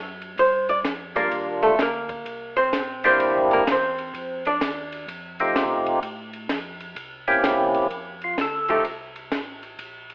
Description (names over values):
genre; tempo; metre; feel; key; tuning
soul jazz organ trio; 128 BPM; 4/4; swing 66% on 8ths; unclear; A4 = 440 Hz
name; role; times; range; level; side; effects
mellow tonewheel organ; bass; 0.0-10.1 s; A1 to C3; -44 LUFS; equal; slow rotary speaker
compact cocktail drum kit; drums; 0.2-10.1 s; hi-hat, kick drum, ride cymbal, snare drum; -30 LUFS; equal; none
archtop guitar, miked and amplified; accompaniment; 0.4-5.0, 8.7-8.8 s; F3 to D5; -21 LUFS; equal; none
percussive tonewheel organ; melody; 1.2-8.8 s; G3 to A4; -21 LUFS; equal; slow rotary speaker, overdrive
room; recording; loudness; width
moderate digital room reverb, RT60 1.0 s, small room reverb; rough home demo mix, telephone sound; -20 LUFS; side -25 dB against mid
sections
0.0-7.9 A section; 7.9-10.1 A section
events
hollow-body jazz guitar solo 0.0-7.9; tonewheel organ solo 7.9-10.1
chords
0.4 Gm7; 2.3 C9; 4.1 F9; 7.0 C7b9; 7.9 F